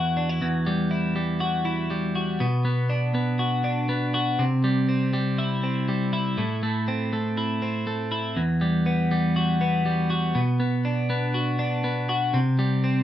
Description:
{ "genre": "indie pop", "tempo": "121 BPM", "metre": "4/4", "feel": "straight", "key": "E minor", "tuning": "A4 = 440 Hz", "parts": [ { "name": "twelve-string electric guitar", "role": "solo", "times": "0.0-13.0 s", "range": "E2 to F#4", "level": "-22 LUFS", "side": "equal", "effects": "none" } ], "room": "moderate small room reverb, RT60 0.5 s", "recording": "rough home demo mix", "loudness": "-22 LUFS", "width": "side -11 dB against mid", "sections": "0.4-13.0 A section", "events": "none", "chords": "0.4 Emadd9; 2.4 Bm; 4.4 C; 6.4 Am; 8.4 Emadd9; 10.4 Bm; 12.3 C5", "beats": "| 0.42 0.92 1.41 1.91 | 2.40 2.90 3.40 3.89 | 4.39 4.89 5.38 5.88 | 6.38 6.87 7.37 7.87 | 8.37 8.86 9.36 9.86 | 10.35 10.85 11.35 11.84 | 12.34 12.84" }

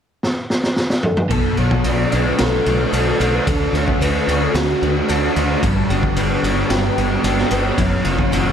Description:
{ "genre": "rock, shoegaze and dream pop", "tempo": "111 BPM", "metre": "4/4", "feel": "straight", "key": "unclear", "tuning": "A4 = 440 Hz", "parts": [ { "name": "raw garage drum kit", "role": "drums", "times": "0.2-8.5 s", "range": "kick drum, ride cymbal, snare drum, toms", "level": "-20 LUFS", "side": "equal", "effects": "none" }, { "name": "hollow clarinet-like synth lead", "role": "melody", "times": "1.0-8.3 s", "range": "F#4 to D5", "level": "-24 LUFS", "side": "left 1 dB", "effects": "chorus, analog delay" }, { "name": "picked twelve-string acoustic guitar", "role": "arpeggios", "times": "1.3-8.5 s", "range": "E4 to C#5", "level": "-29 LUFS", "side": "left 7 dB", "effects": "ensemble chorus, analog delay" }, { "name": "overdriven electric guitar", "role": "riff", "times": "1.3-8.5 s", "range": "F#2 to G4", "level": "-22 LUFS", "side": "left 11 dB", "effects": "ensemble chorus" }, { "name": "overdriven electric guitar", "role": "riff", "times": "1.3-8.5 s", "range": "F#2 to G4", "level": "-22 LUFS", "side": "right 12 dB", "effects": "reverse reverb" }, { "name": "woody fretless electric bass", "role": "bass", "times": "1.3-8.5 s", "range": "F#1 to D2", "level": "-21 LUFS", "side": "equal", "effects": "none" } ], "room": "light reverb, small room ambience", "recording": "dark, warm production", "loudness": "-15 LUFS", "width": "side -8 dB against mid", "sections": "0.0-1.3 A section; 1.3-8.5 B section", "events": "drum fill 0.2-1.3", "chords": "0.0 N.C.; 1.3 Bm7; 3.5 D; 5.6 G; 7.8 F#7(no3)", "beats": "0.24 0.77 | 1.31 1.85 2.39 2.93 | 3.47 4.00 4.54 5.08 | 5.62 6.16 6.70 7.24 | 7.78 8.32" }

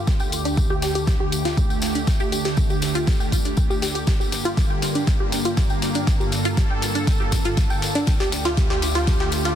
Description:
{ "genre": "progressive house", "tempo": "120 BPM", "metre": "4/4", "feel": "straight", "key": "G minor", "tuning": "A4 = 439 Hz", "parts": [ { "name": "lush unison pad", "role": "sustained chords", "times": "0.0-9.6 s", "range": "D2 to A4", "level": "-26 LUFS", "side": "right 1 dB", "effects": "chorus, phaser, sidechain pumping" }, { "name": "deep house drum kit", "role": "drums", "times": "0.1-9.5 s", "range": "hi-hat, snare drum", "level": "-31 LUFS", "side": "left 1 dB", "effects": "high-pass filter on snare, high-pass filter on hats, high-pass filter on room" }, { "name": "electronic kick drum", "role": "drums", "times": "0.1-9.2 s", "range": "none", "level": "-20 LUFS", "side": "equal", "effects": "none" }, { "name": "tambourine", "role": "percussion", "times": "0.1-9.5 s", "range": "none", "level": "-32 LUFS", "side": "left 4 dB", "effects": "none" }, { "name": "wide unison pluck", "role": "arpeggios", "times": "0.2-9.5 s", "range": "D4 to G5", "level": "-26 LUFS", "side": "right 1 dB", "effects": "sidechain pumping, tape echo" } ], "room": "light reverb", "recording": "dense, heavily limited modern master", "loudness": "-19 LUFS", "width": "side -10 dB against mid", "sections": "0.0-9.6 A section", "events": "build-up 0.0-9.6; drum fill 0.0-9.6; filter sweep on synth pluck 0.0-9.6", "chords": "0.1 Dsus4; 4.1 Gm; 8.1 Dsus4", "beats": "| 0.07 0.57 1.07 1.57 | 2.07 2.57 3.07 3.57 | 4.07 4.57 5.07 5.57 | 6.07 6.57 7.07 7.57 | 8.07 8.57 9.07" }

